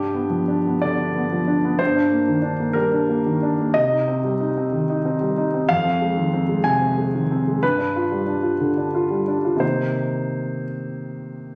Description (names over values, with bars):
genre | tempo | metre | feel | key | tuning
neoclassical minimalist piano | 61 BPM (dotted quarters) | 6/8 | uneven beats, rubato | C minor | A4 = 440 Hz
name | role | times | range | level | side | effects
warm concert grand piano | solo | 0.0-11.6 s | F2 to Ab5 | -21 LUFS | equal | none
room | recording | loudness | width
moderate studio reverb, RT60 0.6 s | recorded on a phone in the room, studio reverb | -21 LUFS | mono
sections
0.0-11.6 A section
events
none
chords
0.0 G7; 1.8 Ebmaj7/G; 3.8 Cm; 5.7 Fm7; 7.6 G7; 9.6 Cm7